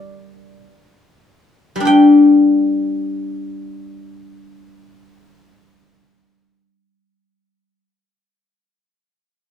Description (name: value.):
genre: chinese traditional, Chinese solo plucked strings.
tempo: free time.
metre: none.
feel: none.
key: G yu mode.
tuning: A4 = 441 Hz.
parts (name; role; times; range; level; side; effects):
guzheng; solo; 0.0-7.8 s; G3 to G5; -12 LUFS; left 2 dB; none.
room: moderate stone room reverb, RT60 0.9 s.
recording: band playing live in one room, small room ambience.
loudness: -10 LUFS.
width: side -9 dB against mid.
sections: 0.0-1.9 A section; 1.9-6.7 B section.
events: slowing down 0.0-1.9.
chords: none.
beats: free time.